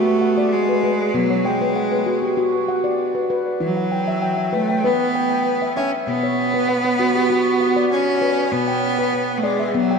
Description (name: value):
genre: world meditative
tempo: 98 BPM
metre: 4/4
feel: straight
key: B minor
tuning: A4 = 440 Hz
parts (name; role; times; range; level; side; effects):
- bright cello; melody; 0.0-10.0 s; F#3 to C#4; -20 LUFS; right 3 dB; shimmer reverb, ping-pong delay
- handpan; arpeggios; 0.0-10.0 s; B2 to G5; -19 LUFS; left 2 dB; shimmer reverb, ping-pong delay
room: wet plate reverb, RT60 3.4 s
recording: dreamy mix soaked in reverb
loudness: -17 LUFS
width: side -5 dB against mid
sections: 0.0-8.5 A section; 8.5-10.0 B section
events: none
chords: 0.0 Bm; 3.6 E5; 6.1 Bm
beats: 0.52 | 1.14 1.76 2.37 2.99 | 3.61 4.22 4.84 5.45 | 6.07 6.68 7.29 7.91 | 8.52 9.13 9.75